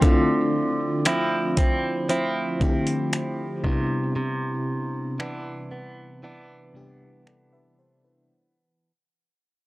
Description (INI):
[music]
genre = contemporary R&B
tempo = 58 BPM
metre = 4/4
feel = straight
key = unclear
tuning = A4 = 444 Hz
[part]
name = FM electric piano with soft pad layer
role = accompaniment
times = 0.0-8.5 s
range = C3 to E5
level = -27 LUFS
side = left 2 dB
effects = chorus, tremolo
[part]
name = direct-recorded clean electric guitar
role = arpeggios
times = 0.0-8.9 s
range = C3 to E4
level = -26 LUFS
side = right 2 dB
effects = harmonic tremolo
[part]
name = dusty soul sampler-style drum kit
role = drums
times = 0.0-7.5 s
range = finger snaps, hi-hat, kick drum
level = -22 LUFS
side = equal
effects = none
[sound]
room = little or no reverb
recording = dry, gritty hardware recording, cassette tape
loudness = -22 LUFS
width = side -19 dB against mid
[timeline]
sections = 0.0-8.3 A section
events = fade-out 0.0-8.3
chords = 0.0 Dm9; 3.6 Cmaj9